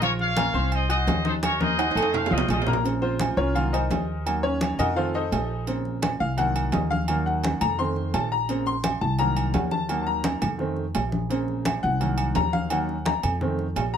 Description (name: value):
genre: latin, salsa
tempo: 170 BPM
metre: 4/4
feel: straight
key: Bb harmonic minor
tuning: A4 = 440 Hz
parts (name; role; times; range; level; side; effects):
- bright trumpet section; melody; 0.0-2.7 s; A4 to F5; -26 LUFS; left 1 dB; none
- bright baby grand piano; accompaniment; 0.0-14.0 s; Db3 to Gb6; -26 LUFS; left 2 dB; none
- upright bass; bass; 0.0-14.0 s; Bb1 to F2; -28 LUFS; equal; none
- agogo bells and timbales; percussion; 0.0-13.9 s; none; -30 LUFS; right 5 dB; none
- congas; percussion; 0.0-13.9 s; none; -30 LUFS; left 2 dB; none
room: moderate studio reverb, RT60 0.6 s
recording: none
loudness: -22 LUFS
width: side -8 dB against mid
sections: 0.0-2.8 A section; 2.8-14.0 B section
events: drum fill 1.4-2.8; grand piano solo 2.8-14.0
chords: 0.0 Bbmadd9; 0.7 Cdim; 1.4 Ebm; 2.1 F; 2.8 Bbmadd9; 3.6 Cm7b5; 4.3 Ebm; 5.0 F7; 5.7 Bbmadd9; 6.4 Cm7b5; 7.1 Ebm; 7.8 F7; 8.5 Bbmadd9; 9.2 Cm7b5; 9.9 Ebm; 10.6 F7; 11.3 Bbmadd9; 12.0 Cm7b5; 12.7 Ebm; 13.4 F7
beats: | 0.02 0.37 0.73 1.08 | 1.43 1.79 2.14 2.49 | 2.85 3.20 3.55 3.91 | 4.26 4.61 4.97 5.32 | 5.67 6.03 6.38 6.73 | 7.08 7.44 7.79 8.14 | 8.49 8.84 9.20 9.55 | 9.90 10.25 10.60 10.95 | 11.30 11.65 12.01 12.36 | 12.71 13.06 13.41 13.76